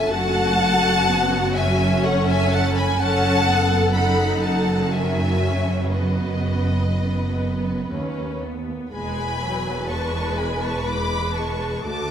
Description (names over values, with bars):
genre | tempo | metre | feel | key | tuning
cinematic, emotional film score for orchestra | 61 BPM | 3/4 | rubato | unclear | A4 = 440 Hz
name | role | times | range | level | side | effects
rich studio violin section | melody | 0.0-12.1 s | D#5 to D6 | -27 LUFS | left 4 dB | none
warm studio violin section | second line | 0.0-12.1 s | B4 to B5 | -25 LUFS | left 1 dB | none
rich studio viola section | accompaniment | 0.0-12.1 s | D#3 to B4 | -25 LUFS | equal | none
rich studio double bass section | bass | 0.0-12.1 s | E1 to D#2 | -25 LUFS | right 2 dB | none
warm studio cello section | bass | 0.0-12.1 s | D2 to F#2 | -26 LUFS | right 2 dB | none
room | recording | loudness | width
moderate concert hall reverb, RT60 1.8 s | none | -19 LUFS | side -8 dB against mid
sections
0.0-12.1 A section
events
none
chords
0.0 F#m; 3.0 B7/F#; 8.9 E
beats
| 0.09 1.06 2.04 | 3.00 3.96 4.93 | 5.92 6.93 7.92 | 8.93 9.91 10.88 | 11.86